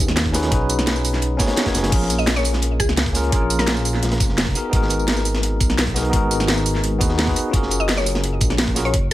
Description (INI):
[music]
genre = liquid drum and bass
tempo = 171 BPM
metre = 4/4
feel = straight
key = G# dorian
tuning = A4 = 441 Hz
[part]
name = bell-like tine electric piano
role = accompaniment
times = 0.0-9.0 s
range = A#3 to C#5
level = -23 LUFS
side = left 1 dB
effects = fast stereo tremolo, tape echo
[part]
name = dark detuned saw bass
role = bass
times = 0.0-9.1 s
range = E#1 to D#2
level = -22 LUFS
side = equal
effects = none
[part]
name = drum and bass drum kit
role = drums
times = 0.0-9.1 s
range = crash cymbal, hi-hat, snare drum, tambourine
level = -22 LUFS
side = equal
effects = none
[part]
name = crunchy breakbeat drum kit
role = drums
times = 0.2-9.0 s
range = hi-hat, snare drum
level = -28 LUFS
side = equal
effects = high-pass filter on hats, high-pass filter on snare, high-pass filter on room
[part]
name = electronic kick drum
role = drums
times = 0.3-9.0 s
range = none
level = -21 LUFS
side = equal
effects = none
[part]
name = mallet-like synth pluck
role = melody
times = 2.2-3.9, 7.8-9.1 s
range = G#4 to D#5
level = -26 LUFS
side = left 2 dB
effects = wide subtle chorus, tape echo
[sound]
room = digital ambience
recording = none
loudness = -17 LUFS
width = side -15 dB against mid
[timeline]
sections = 0.0-9.1 A section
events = none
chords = 0.0 B6; 1.9 A#m7; 4.6 G#m7; 7.5 F#maj7